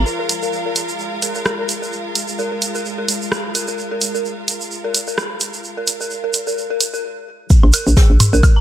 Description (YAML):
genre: minimal techno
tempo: 129 BPM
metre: 4/4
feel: swing 56% on 16ths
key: unclear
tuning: A4 = 435 Hz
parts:
  - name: hollow knocking FM bass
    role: bass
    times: 0.0, 7.6-8.4 s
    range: Bb1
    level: -13 LUFS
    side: equal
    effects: sidechain pumping
  - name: clear studio string section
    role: texture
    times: 0.0-7.0 s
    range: F4 to F5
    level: -28 LUFS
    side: equal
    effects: sidechain pumping
  - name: pulsing gated texture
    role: texture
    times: 0.1-7.0 s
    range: Ab3 to Ab4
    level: -32 LUFS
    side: left 2 dB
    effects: chorus, built-in reverb, sidechain pumping
  - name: dark detuned synth bell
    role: riff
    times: 0.1-8.6 s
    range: Ab4 to Bb5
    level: -25 LUFS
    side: left 1 dB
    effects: chorus, phaser, sidechain pumping, low-pass filter, digital delay
  - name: tube shaker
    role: percussion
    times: 0.1-8.5 s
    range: none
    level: -23 LUFS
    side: right 4 dB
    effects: none
  - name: punchy analog drum machine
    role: drums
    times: 0.3-8.3 s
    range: hi-hat, rim click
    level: -19 LUFS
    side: right 1 dB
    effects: none
  - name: bright concert flute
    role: melody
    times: 1.5-1.7 s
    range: Bb4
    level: -30 LUFS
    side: left 3 dB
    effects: low-pass filter, ping-pong delay
  - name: electronic kick drum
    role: drums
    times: 7.5-8.5 s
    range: none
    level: -10 LUFS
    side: equal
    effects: none
  - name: shaker and snare drum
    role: drums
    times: 7.5-8.6 s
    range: none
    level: -26 LUFS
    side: right 2 dB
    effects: high-pass filter on snare, high-pass filter on perc, high-pass filter on room
  - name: electronic woodblock and toms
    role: percussion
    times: 7.6-8.5 s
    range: none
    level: -17 LUFS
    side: equal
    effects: none
room: light reverb, studio reverb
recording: bright 1980s-style digital production, high-pass filter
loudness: -16 LUFS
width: side -12 dB against mid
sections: 0.1-7.5 A section; 7.5-8.6 B section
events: build-up 0.1-7.5; stop 7.0-7.5; drop 7.5-8.6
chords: 0.1 Bb5